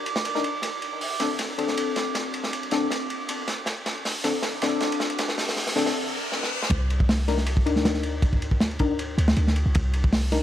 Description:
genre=drum and bass, jungle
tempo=158 BPM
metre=4/4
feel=straight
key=C dorian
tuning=A4 = 440 Hz
part: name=drifting glass-harmonics texture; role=texture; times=0.0-5.9 s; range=D6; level=-34 LUFS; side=right 9 dB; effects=chorus, built-in reverb
part: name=crunchy breakbeat drum kit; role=drums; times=0.1-10.4 s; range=hi-hat, kick drum, ride cymbal, snare drum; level=-26 LUFS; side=equal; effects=high-pass filter on kick, high-pass filter on cymbals, high-pass filter on hats, high-pass filter on snare, high-pass filter on room
part: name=deep mellow chord stab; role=stabs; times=0.3-10.4 s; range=C4 to Bb4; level=-28 LUFS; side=left 4 dB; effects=chorus, dub echo
part: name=riser and reverse cymbal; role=sound effects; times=3.2-6.7 s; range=none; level=-36 LUFS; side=equal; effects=none
part: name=warm 808-style bass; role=bass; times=6.7-10.4 s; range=C2 to D2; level=-24 LUFS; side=equal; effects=tube saturation
room=moderate lush hall reverb, RT60 1.8 s, studio reverb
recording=vinyl crackle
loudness=-22 LUFS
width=side -12 dB against mid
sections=0.0-6.7 A section; 6.7-10.4 B section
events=build-up 0.0-6.7; drum fill 0.6-6.0, 6.3-6.7; riser 3.2-6.7; break 6.0-6.7; reverse cymbal 6.0-6.7; drop 6.7-10.4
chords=0.0 Bbadd11/D; 0.6 Amadd11/C; 6.7 Cm7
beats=0.25 | 0.63 1.01 1.39 1.77 | 2.15 2.53 2.91 3.29 | 3.67 4.05 4.43 4.81 | 5.19 5.57 5.95 6.33 | 6.71 7.09 7.47 7.85 | 8.23 8.61 8.99 9.37 | 9.75 10.13

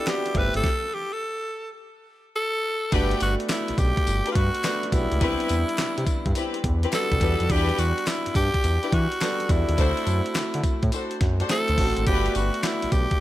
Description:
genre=R&B, new jack swing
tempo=105 BPM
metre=4/4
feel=swing 67% on 16ths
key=G major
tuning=A4 = 440 Hz
part: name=breathy tenor saxophone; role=melody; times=0.0-13.2 s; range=E4 to B4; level=-27 LUFS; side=equal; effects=none
part: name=warm concert grand piano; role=accompaniment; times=0.0-13.2 s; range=G3 to A4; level=-30 LUFS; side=right 1 dB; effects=none
part: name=clean 12-bit digital drum machine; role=drums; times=0.1-13.2 s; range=handclaps, hi-hat, kick drum, snare drum, tambourine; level=-26 LUFS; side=equal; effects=gated reverb
part: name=group handclap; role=percussion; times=0.1-12.8 s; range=none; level=-40 LUFS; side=left 5 dB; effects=none
part: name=smooth synth bass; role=bass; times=0.3-13.1 s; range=G1 to E3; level=-25 LUFS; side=equal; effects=none
part: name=rich studio string section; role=stabs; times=2.9-12.3 s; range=C4 to C5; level=-31 LUFS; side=left 4 dB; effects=digital delay
room=little or no reverb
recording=none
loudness=-21 LUFS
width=side -15 dB against mid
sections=0.0-2.9 A section; 2.9-13.2 B section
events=stop 0.6-2.9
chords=0.4 Gsus2; 1.8 N.C.; 2.9 Gmaj7; 5.2 Cmaj7; 7.2 Em7; 9.8 D7; 12.1 Gmaj7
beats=0.07 | 0.64 1.21 1.78 2.35 | 2.92 3.50 4.07 4.64 | 5.21 5.78 6.35 6.92 | 7.50 8.07 8.64 9.21 | 9.78 10.35 10.93 11.50 | 12.07 12.64

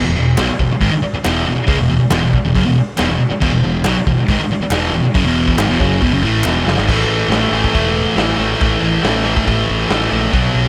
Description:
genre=garage rock duo or trio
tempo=139 BPM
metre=4/4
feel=straight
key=unclear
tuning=A4 = 440 Hz
part: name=thick fuzz guitar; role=riff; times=0.0-10.7 s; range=E2 to B3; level=-17 LUFS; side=equal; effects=distortion
part: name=modern bright picked electric bass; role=bass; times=0.0-10.7 s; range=E1 to C#2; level=-23 LUFS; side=equal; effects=none
part: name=raw garage drum kit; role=drums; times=0.4-10.4 s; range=crash cymbal, hi-hat, kick drum, snare drum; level=-22 LUFS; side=equal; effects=none
part: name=group handclap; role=percussion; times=0.4-6.5 s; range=none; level=-30 LUFS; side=equal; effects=none
room=light reverb, studio ambience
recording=none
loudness=-15 LUFS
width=mono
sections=0.0-6.9 A section; 6.9-10.7 B section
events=drum fill 6.4-6.9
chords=0.0 E; 6.9 A5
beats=0.38 0.81 1.25 | 1.68 2.12 2.55 2.98 | 3.42 3.85 4.28 4.72 | 5.15 5.58 6.01 6.45 | 6.88 7.31 7.74 8.17 | 8.61 9.04 9.47 9.90 | 10.33

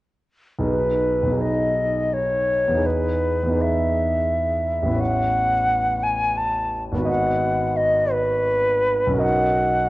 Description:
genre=classical, impressionist duo for flute and grand piano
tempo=84 BPM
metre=3/4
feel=uneven beats, rubato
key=B major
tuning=A4 = 440 Hz
part: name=warm concert grand piano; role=accompaniment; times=0.6-9.9 s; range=G#1 to D#5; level=-23 LUFS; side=equal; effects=none
part: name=concert flute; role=melody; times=0.7-9.9 s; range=B4 to A5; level=-20 LUFS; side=equal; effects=none
room=moderate recital hall reverb, RT60 1.5 s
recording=worn, warbling old tape, cassette tape, warbly pitch drift, nothing above 10.3 kHz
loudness=-19 LUFS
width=side -18 dB against mid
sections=0.7-9.9 A section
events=none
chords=0.7 B6; 2.8 Emaj7; 5.0 Aadd9; 7.1 G#m7; 9.2 Bmaj9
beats=| 0.68 1.40 2.12 | 2.85 3.61 4.31 | 5.00 5.69 6.39 | 7.09 7.78 8.48 | 9.23

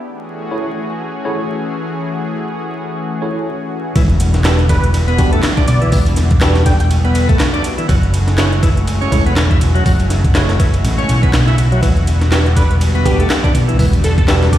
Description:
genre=breakbeat, breaks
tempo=122 BPM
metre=4/4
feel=swing 57% on 16ths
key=unclear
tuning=A4 = 439 Hz
part: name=lush unison pad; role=sustained chords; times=0.0-14.6 s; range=C#3 to G#4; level=-22 LUFS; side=left 1 dB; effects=chorus, sidechain pumping
part: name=tine electric piano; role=stabs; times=0.5-14.5 s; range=D4 to C#5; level=-23 LUFS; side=right 1 dB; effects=overdrive, fast stereo tremolo, ping-pong delay
part: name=bright tonewheel organ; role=riff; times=4.0-14.6 s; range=D3 to F#4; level=-21 LUFS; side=equal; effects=overdrive, slow rotary speaker, tube saturation, ping-pong delay
part: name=hollow-body short-scale fingered electric bass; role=bass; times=4.0-14.6 s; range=E1 to B1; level=-14 LUFS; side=equal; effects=tube saturation
part: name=breakbeat sampler-style drum kit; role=drums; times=4.0-14.6 s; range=hi-hat, kick drum, ride cymbal, snare drum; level=-16 LUFS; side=equal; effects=none
part: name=house drum kit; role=drums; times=4.0-14.6 s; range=handclaps, hi-hat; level=-25 LUFS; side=equal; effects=none
part: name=impact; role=sound effects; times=4.0-5.9 s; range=none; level=-22 LUFS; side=equal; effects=none
part: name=plucky unison lead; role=melody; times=4.7-6.9, 12.6-14.2 s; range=G4 to G5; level=-25 LUFS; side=equal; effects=telephone sound, vintage 12-bit sampler grit, ping-pong delay
room=light reverb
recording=played on a big sound system in a bare room, large studio reverb, vinyl crackle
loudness=-12 LUFS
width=side -12 dB against mid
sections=0.0-4.0 A section; 4.0-14.6 B section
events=break 3.5-4.0; drop 4.0-14.6; impact 4.0-5.9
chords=0.0 F#m9; 4.0 Em9; 7.9 F#m9; 11.8 Em9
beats=| 0.02 0.51 1.00 1.50 | 1.99 2.48 2.97 3.46 | 3.96 4.45 4.94 5.43 | 5.92 6.42 6.91 7.40 | 7.89 8.38 8.87 9.37 | 9.86 10.35 10.84 11.33 | 11.82 12.32 12.81 13.30 | 13.79 14.28

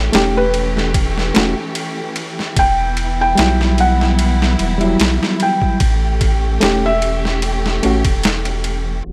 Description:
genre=trip hop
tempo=74 BPM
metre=4/4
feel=swing 54% on 16ths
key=unclear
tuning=A4 = 440 Hz
part: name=warm studio string section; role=sustained chords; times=0.0-9.1 s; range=E3 to G4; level=-26 LUFS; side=equal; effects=none
part: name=soft dub sub bass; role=bass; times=0.0-9.1 s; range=E1 to B1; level=-21 LUFS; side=equal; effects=none
part: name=reed electric piano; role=accompaniment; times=0.1-8.0 s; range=F#3 to G4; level=-21 LUFS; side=equal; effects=tremolo, vintage 12-bit sampler grit, tape echo
part: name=boom bap sampler-style drum kit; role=drums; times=0.1-8.8 s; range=kick drum, ride cymbal, snare drum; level=-22 LUFS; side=equal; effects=overdrive
part: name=felt-muted upright piano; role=melody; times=0.4-7.4 s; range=B4 to G5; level=-22 LUFS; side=equal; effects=dub echo
room=light reverb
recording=low-pass filter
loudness=-16 LUFS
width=mono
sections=0.0-9.1 A section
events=none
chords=0.0 A7; 2.6 Emadd9; 5.8 A7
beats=0.13 0.94 1.75 | 2.57 3.38 4.19 5.00 | 5.81 6.62 7.43 8.24 | 9.05

